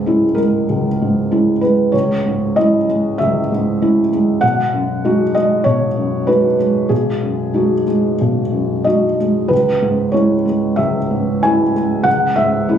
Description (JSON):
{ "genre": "neoclassical minimalist piano", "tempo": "95 BPM", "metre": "4/4", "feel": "rubato", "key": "C# dorian", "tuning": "A4 = 440 Hz", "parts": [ { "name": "felt-muted upright piano", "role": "solo", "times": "0.0-12.8 s", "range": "B1 to G#5", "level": "-13 LUFS", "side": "equal", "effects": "none" } ], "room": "light reverb", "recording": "recorded on a phone in the room, club reverb, compression", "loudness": "-13 LUFS", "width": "side -9 dB against mid", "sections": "0.0-12.8 A section", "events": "none", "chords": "0.0 C#m; 4.4 B6; 9.5 C#m" }